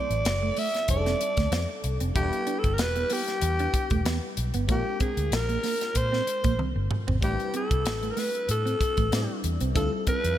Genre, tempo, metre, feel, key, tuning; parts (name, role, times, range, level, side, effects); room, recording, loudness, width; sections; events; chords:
polished 1980s jazz-funk pop; 95 BPM; 4/4; swing 54% on 16ths; A4 = 435 Hz
breathy alto saxophone; melody; 0.0-10.4 s; G4 to E5; -29 LUFS; equal
FM electric piano; accompaniment; 0.0-10.4 s; F#3 to D5; -36 LUFS; left 4 dB; phaser, ensemble chorus
mellow electric guitar; riff; 0.0-10.2 s; A3 to E4; -34 LUFS; right 5 dB; analog chorus
vintage muted fingered electric bass; bass; 0.1-10.4 s; E1 to Bb2; -28 LUFS; equal
tight funk drum kit; drums; 0.1-10.4 s; hi-hat, kick drum, snare drum, toms; -29 LUFS; equal
light reverb, studio ambience; bright 1980s-style digital production; -24 LUFS; side -12 dB against mid
0.0-10.4 A section
drum fill 6.6-7.2
0.0 F#m7b5; 0.9 F13; 2.2 Em7; 4.7 Bb9; 7.2 Am11; 9.8 Dm11